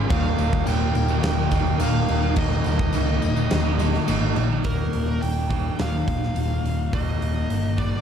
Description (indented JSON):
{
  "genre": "rock, shoegaze and dream pop",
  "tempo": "106 BPM",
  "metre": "4/4",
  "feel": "straight",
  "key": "Eb major",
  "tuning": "A4 = 440 Hz",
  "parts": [
    { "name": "ensemble organ-string", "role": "sustained chords", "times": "0.0-4.6 s", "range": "Bb4 to Eb6", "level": "-35 LUFS", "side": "equal", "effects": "ensemble chorus" },
    { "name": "picked twelve-string acoustic guitar", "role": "arpeggios", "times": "0.0-8.0 s", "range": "Eb2 to Eb4", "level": "-34 LUFS", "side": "right 10 dB", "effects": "none" },
    { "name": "distorted electric guitar", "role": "riff", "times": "0.0-4.6 s", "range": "Eb2 to Db4", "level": "-30 LUFS", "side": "equal", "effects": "overdrive" },
    { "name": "thick fuzz guitar", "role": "riff", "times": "0.0-8.0 s", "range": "Eb2 to Ab3", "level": "-28 LUFS", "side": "left 10 dB", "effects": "distortion, lush chorus" },
    { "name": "twangy electric guitar", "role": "riff", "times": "0.0-8.0 s", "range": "Eb2 to Eb4", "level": "-29 LUFS", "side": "right 12 dB", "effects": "reverse reverb" },
    { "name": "overdriven picked electric bass", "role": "bass", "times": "0.0-8.0 s", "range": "Eb1 to Db2", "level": "-24 LUFS", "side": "equal", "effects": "none" },
    { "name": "smooth overdriven lead guitar", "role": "melody", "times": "0.1-8.0 s", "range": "Bb4 to G5", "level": "-31 LUFS", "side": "right 1 dB", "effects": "analog delay" },
    { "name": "huge arena drum kit", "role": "drums", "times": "0.1-7.9 s", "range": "crash cymbal, hi-hat, kick drum, snare drum", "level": "-28 LUFS", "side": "equal", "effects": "none" },
    { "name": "tambourine", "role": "percussion", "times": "0.1-4.6 s", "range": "none", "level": "-46 LUFS", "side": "left 13 dB", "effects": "none" }
  ],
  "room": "studio reverb",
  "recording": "dark, warm production",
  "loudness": "-20 LUFS",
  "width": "side -8 dB against mid",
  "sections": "0.0-4.6 A section; 4.6-8.0 B section",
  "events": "none",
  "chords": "0.1 Ebadd9; 2.4 Eb"
}